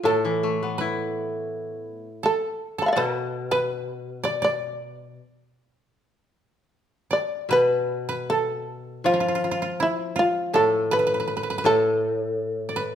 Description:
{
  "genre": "japanese traditional, Japanese chamber music",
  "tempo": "81 BPM",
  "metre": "4/4",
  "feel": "rubato",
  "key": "unclear",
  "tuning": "A4 = 442 Hz",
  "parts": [
    { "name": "koto", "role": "second line", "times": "0.0-12.9 s", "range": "E4 to D5", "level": "-29 LUFS", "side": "right 3 dB", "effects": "none" },
    { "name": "koto", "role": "accompaniment", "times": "0.0-12.9 s", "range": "A2 to E4", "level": "-26 LUFS", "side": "left 1 dB", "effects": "none" },
    { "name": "shamisen", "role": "melody", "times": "0.1-12.9 s", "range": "E4 to B5", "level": "-23 LUFS", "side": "equal", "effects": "none" }
  ],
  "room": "moderate recital hall reverb, RT60 1.3 s",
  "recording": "minimal, uncompressed stereo recording",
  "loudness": "-22 LUFS",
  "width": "side -9 dB against mid",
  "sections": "0.0-7.5 A section; 7.5-12.9 B section",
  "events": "none",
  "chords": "none"
}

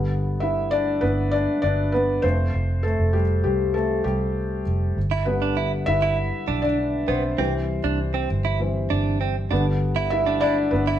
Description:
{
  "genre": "piano-driven pop",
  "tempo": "99 BPM",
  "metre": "4/4",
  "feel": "straight",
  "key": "unclear",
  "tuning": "A4 = 440 Hz",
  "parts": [
    { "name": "felt-muted upright piano", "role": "accompaniment", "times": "0.0-11.0 s", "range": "D3 to E5", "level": "-23 LUFS", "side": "left 1 dB", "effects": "none" },
    { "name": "vintage muted fingered electric bass", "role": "bass", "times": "0.0-11.0 s", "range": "F1 to C2", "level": "-25 LUFS", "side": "right 1 dB", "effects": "none" },
    { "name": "direct-recorded clean electric guitar", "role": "riff", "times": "5.1-11.0 s", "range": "B3 to E4", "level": "-26 LUFS", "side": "right 7 dB", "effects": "none" }
  ],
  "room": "moderate stone room reverb, RT60 1.0 s",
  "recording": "band playing live in one room",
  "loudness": "-20 LUFS",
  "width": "side -10 dB against mid",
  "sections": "0.0-11.0 A section",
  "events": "felt piano solo 0.0-11.0",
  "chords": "0.0 G; 2.2 F; 5.0 G; 7.4 C; 9.5 G"
}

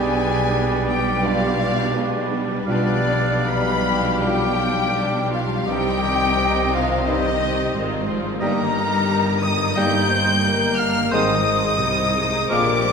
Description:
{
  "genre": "classical",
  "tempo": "71-90 BPM",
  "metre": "4/4",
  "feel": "rubato",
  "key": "C minor, Eb major from 8.4 s",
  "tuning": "A4 = 441 Hz",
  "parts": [
    { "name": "warm symphonic violin section", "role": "melody", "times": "0.0-12.9 s", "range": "D5 to G6", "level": "-24 LUFS", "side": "left 3 dB", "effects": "none" },
    { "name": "clear oboe", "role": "second line", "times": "0.0-12.7 s", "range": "Bb4 to F5", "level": "-30 LUFS", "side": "right 1 dB", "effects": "none" },
    { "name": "silver concert flute", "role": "second line", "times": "0.0-12.9 s", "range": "D5 to G6", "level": "-27 LUFS", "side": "left 3 dB", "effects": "none" },
    { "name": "warm clarinet", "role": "second line", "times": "0.0-12.9 s", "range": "D4 to G5", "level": "-29 LUFS", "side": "left 1 dB", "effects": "none" },
    { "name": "warm symphonic violin section", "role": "second line", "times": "0.0-12.9 s", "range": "B3 to D5", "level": "-30 LUFS", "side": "left 2 dB", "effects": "none" },
    { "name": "mellow bassoon", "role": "accompaniment", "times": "0.0-12.7 s", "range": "G3 to Ab3", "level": "-29 LUFS", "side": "right 2 dB", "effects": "none" },
    { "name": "rich symphonic viola section", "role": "accompaniment", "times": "0.0-12.9 s", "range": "Eb3 to F4", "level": "-28 LUFS", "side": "right 2 dB", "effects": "none" },
    { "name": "mellow French horn section", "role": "sustained chords", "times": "0.0-12.7 s", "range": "Bb3 to F4", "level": "-31 LUFS", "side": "left 4 dB", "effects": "none" },
    { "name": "warm trombone section", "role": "sustained chords", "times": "0.0-12.8 s", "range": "F2 to Ab3", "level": "-31 LUFS", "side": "right 3 dB", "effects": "none" },
    { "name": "concert harp", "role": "arpeggios", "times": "0.0-12.9 s", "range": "G2 to D6", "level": "-28 LUFS", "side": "left 8 dB", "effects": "none" },
    { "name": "dark tuba", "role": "bass", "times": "0.0-12.9 s", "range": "G1 to C2", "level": "-29 LUFS", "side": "right 3 dB", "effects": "none" },
    { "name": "rich symphonic double bass section", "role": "bass", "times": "0.0-12.9 s", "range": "G1 to C2", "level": "-29 LUFS", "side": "right 4 dB", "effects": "none" },
    { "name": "warm studio cello section", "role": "bass", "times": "0.0-12.9 s", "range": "G2 to C3", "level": "-28 LUFS", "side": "right 2 dB", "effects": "none" }
  ],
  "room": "wet concert hall reverb, RT60 1.8 s",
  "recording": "none",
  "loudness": "-18 LUFS",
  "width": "side -6 dB against mid",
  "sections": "0.0-12.9 A section",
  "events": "none",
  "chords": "0.0 G/B; 2.7 G7/B; 5.7 Cm; 8.4 Eb/G; 11.1 Ab"
}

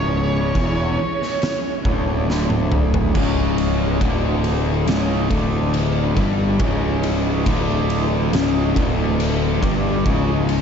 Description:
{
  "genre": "stoner and doom metal",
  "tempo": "70 BPM",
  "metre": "4/4",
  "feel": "straight",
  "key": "unclear",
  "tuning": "A4 = 441 Hz",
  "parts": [
    { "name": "fuzz lead guitar", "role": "melody", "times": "0.0-2.2 s", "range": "C#5", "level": "-27 LUFS", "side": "right 4 dB", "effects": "wah, distortion, tape echo" },
    { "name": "string machine, violas", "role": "sustained chords", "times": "0.0-10.6 s", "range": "E3 to D#5", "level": "-32 LUFS", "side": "equal", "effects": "none" },
    { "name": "fuzz guitar", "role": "riff", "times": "0.0-10.6 s", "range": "C#2 to G3", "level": "-22 LUFS", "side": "equal", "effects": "distortion" },
    { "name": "fuzz picked electric bass", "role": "bass", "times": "0.0-10.6 s", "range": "C#1 to G1", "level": "-22 LUFS", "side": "equal", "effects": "overdrive" },
    { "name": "oversized low-tuned drum kit", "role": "drums", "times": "0.5-10.6 s", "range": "crash cymbal, kick drum, ride cymbal, snare drum, toms", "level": "-23 LUFS", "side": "equal", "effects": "none" },
    { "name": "fuzz guitar", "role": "riff", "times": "3.1-10.6 s", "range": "C#2 to G3", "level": "-23 LUFS", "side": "left 3 dB", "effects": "distortion" }
  ],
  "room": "light reverb, studio reverb",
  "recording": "dark, warm production, nothing above 7.8 kHz",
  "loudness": "-17 LUFS",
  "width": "side -7 dB against mid",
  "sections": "0.0-3.1 A section; 3.1-10.6 B section",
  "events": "drum fill 2.3-3.1",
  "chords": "0.0 C#m"
}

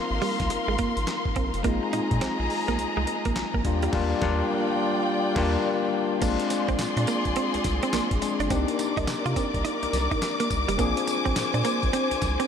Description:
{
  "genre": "R&B, new jack swing",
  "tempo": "105 BPM",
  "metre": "4/4",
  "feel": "swing 63% on 16ths",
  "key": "unclear",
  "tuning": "A4 = 442 Hz",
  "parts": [
    { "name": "barky tine electric piano", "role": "accompaniment", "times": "0.0-12.5 s", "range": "G3 to Ab4", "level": "-28 LUFS", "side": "moving between left 7 dB and equal", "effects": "auto-pan" },
    { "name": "muted studio string section", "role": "sustained chords", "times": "0.0-12.5 s", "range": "F4 to D6", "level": "-29 LUFS", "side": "left 3 dB", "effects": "none" },
    { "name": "round analog bass", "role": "bass", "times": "0.1-12.4 s", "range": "F1 to C3", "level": "-29 LUFS", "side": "right 1 dB", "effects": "none" },
    { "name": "direct-recorded clean electric guitar", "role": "riff", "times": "0.2-12.5 s", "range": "G3 to F4", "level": "-31 LUFS", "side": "right 6 dB", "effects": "wide subtle chorus" },
    { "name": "dusty soul sampler-style drum kit", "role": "drums", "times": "0.2-12.5 s", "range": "crash cymbal, handclaps, hi-hat, kick drum, snare drum, tambourine", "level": "-32 LUFS", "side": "equal", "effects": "none" }
  ],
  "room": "wet huge ambient reverb, RT60 8.2 s",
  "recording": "dreamy mix soaked in reverb",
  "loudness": "-23 LUFS",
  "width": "side -7 dB against mid",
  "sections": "0.0-6.2 A section; 6.2-12.5 B section",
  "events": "band accent 3.9-6.2",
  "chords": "0.0 Ab69; 1.6 Bb7sus4; 3.6 Ebmaj9; 6.2 Bb9; 8.5 Cm9; 10.8 Bb9"
}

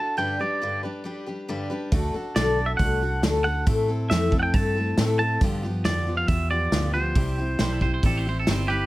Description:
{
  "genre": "honky-tonk and classic country",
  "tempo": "137 BPM",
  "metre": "4/4",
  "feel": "straight",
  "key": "unclear",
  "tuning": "A4 = 440 Hz",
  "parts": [
    { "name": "twangy electric guitar", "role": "melody", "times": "0.0-8.9 s", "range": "G4 to A5", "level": "-26 LUFS", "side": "right 1 dB", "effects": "none" },
    { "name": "picked steel-string acoustic guitar", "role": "accompaniment", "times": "0.0-8.9 s", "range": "G2 to B4", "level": "-28 LUFS", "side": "left 2 dB", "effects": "none" },
    { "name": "vintage muted fingered electric bass", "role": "bass", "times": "1.9-8.9 s", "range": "G1 to A2", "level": "-26 LUFS", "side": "equal", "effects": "none" },
    { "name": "natural country drum kit", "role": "drums", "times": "1.9-8.6 s", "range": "hi-hat, kick drum, snare drum", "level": "-24 LUFS", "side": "equal", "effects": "none" },
    { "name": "twangy electric guitar", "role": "second line", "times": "7.6-8.9 s", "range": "A4 to C5", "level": "-30 LUFS", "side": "right 4 dB", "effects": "none" }
  ],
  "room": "light reverb",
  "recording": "close, detailed microphones",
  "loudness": "-21 LUFS",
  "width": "side -17 dB against mid",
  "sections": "0.0-8.9 A section",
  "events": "none",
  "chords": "0.2 G; 1.9 D; 3.7 Am; 5.4 G7; 7.2 C"
}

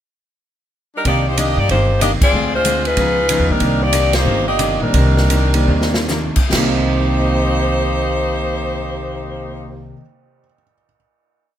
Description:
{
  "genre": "jazz, big band swing",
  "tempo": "131-188 BPM",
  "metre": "4/4",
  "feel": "swing 63% on 8ths",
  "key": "C minor",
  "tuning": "A4 = 440 Hz",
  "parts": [
    { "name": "warm saxophone section", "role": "melody", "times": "1.0-9.9 s", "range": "G3 to Eb5", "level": "-18 LUFS", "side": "left 1 dB", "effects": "none" },
    { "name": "upright bass", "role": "bass", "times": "1.0-9.9 s", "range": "G1 to G2", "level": "-19 LUFS", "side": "equal", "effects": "none" },
    { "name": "hollow-body jazz guitar", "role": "accompaniment", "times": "1.1-10.1 s", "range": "C3 to F4", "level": "-24 LUFS", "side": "left 1 dB", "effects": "none" },
    { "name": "swinging big-band drum kit", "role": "drums", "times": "1.1-6.7 s", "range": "crash cymbal, hi-hat, kick drum, ride cymbal, snare drum", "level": "-21 LUFS", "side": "right 1 dB", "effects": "none" },
    { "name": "warm concert grand piano", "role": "accompaniment", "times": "3.5-11.0 s", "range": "C3 to G6", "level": "-23 LUFS", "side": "right 1 dB", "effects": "none" }
  ],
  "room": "little or no reverb",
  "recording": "close, detailed microphones",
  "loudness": "-14 LUFS",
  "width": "side -10 dB against mid",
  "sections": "0.0-1.0 pickup bar; 1.0-6.5 A section; 6.5-10.2 final chord",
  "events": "band accent 2.2, 4.1; slowing down 3.6-6.5; drum fill 5.7-6.1",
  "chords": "0.0 N.C.; 1.0 Cm9; 2.3 Dm7b5; 3.0 Db9; 3.6 Cm9; 6.5 Cm7"
}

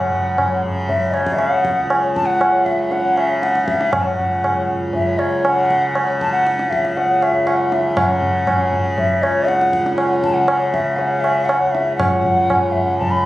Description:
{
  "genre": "indian classical, Hindustani",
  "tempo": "119 BPM",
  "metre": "4/4",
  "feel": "straight",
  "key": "unclear",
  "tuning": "A4 = 440 Hz",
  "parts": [
    { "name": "bansuri", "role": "melody", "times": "0.0-13.3 s", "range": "C#5 to B5", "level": "-18 LUFS", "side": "left 1 dB", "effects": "none" },
    { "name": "tanpura", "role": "drone", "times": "0.0-13.3 s", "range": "C#2 to C#3", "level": "-21 LUFS", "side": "equal", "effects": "none" },
    { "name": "tabla", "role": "percussion", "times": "0.1-13.2 s", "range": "none", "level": "-20 LUFS", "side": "equal", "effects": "none" }
  ],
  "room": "moderate concert hall reverb, RT60 2.0 s",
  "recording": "recorded on a phone in the room, studio reverb",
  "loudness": "-15 LUFS",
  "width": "side -16 dB against mid",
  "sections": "0.0-13.3 A section",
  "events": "none",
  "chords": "none"
}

